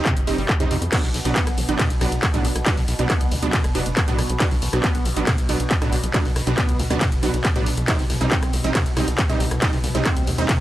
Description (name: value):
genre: driving peak-time techno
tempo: 138 BPM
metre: 4/4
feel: straight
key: B phrygian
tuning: A4 = 440 Hz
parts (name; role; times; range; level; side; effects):
- rave stab; stabs; 0.0-10.5 s; F#3 to Eb4; -26 LUFS; right 3 dB; chorus, built-in reverb, sidechain pumping, tape echo
- overtone-sweeping drone; drone; 0.0-10.6 s; B2; -30 LUFS; equal; chorus, built-in reverb, sidechain pumping
- acid bass, saw; riff; 0.1-10.6 s; B1 to C4; -28 LUFS; equal; ensemble chorus, vintage 12-bit sampler grit, sidechain pumping, tape echo
- electronic kick drum; drums; 0.1-10.6 s; none; -21 LUFS; equal; none
- punchy analog drum machine; drums; 0.1-10.6 s; crash cymbal, handclaps, hi-hat, ride cymbal, rim click; -26 LUFS; equal; overdrive, sidechain pumping on hats, sidechain pumping on cymbals
- tight sequencer bass; bass; 0.2-10.5 s; F#1 to E#2; -26 LUFS; equal; sidechain pumping
room: light reverb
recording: dry, gritty hardware recording, transformer saturation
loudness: -18 LUFS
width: side -14 dB against mid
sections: 0.0-10.6 A section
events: none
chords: 0.0 Cm; 0.9 Bm; 7.9 Cm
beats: 0.06 0.49 | 0.92 1.36 1.79 2.23 | 2.66 3.10 3.53 3.97 | 4.40 4.84 5.27 5.71 | 6.14 6.58 7.01 7.45 | 7.88 8.31 8.75 9.19 | 9.62 10.05 10.49